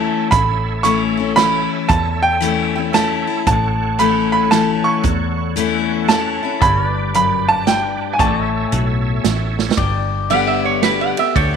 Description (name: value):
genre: honky-tonk and classic country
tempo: 114 BPM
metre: 3/4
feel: swing 64% on 8ths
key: A mixolydian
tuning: A4 = 440 Hz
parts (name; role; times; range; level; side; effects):
- bright upright piano; melody; 0.0-9.6 s; G5 to C#6; -18 LUFS; right 3 dB; tape echo
- overdriven tonewheel organ; accompaniment; 0.0-9.7 s; G4 to F#5; -28 LUFS; right 12 dB; slow rotary speaker, chorus vibrato
- picked steel-string acoustic guitar; accompaniment; 0.0-11.6 s; E2 to G4; -20 LUFS; left 10 dB; none
- pedal steel guitar; sustained chords; 0.0-11.6 s; B4 to G5; -26 LUFS; left 10 dB; lush chorus
- fingered electric bass; bass; 0.0-11.6 s; G1 to E2; -23 LUFS; right 1 dB; none
- natural country drum kit; drums; 0.3-11.5 s; hi-hat, kick drum, ride cymbal, snare drum; -20 LUFS; right 6 dB; none
- lap resonator guitar; second line; 10.3-11.6 s; B4 to F#5; -17 LUFS; right 12 dB; none
room: moderate plate reverb, RT60 1.8 s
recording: 1960s-style stereo with parts hard left and right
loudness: -14 LUFS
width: side -6 dB against mid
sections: 0.0-9.8 A section; 9.8-11.6 B section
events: drum fill 9.5; resonator guitar played with a steel bar solo 9.8-11.6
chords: 0.0 A; 6.6 G; 8.2 A; 9.8 G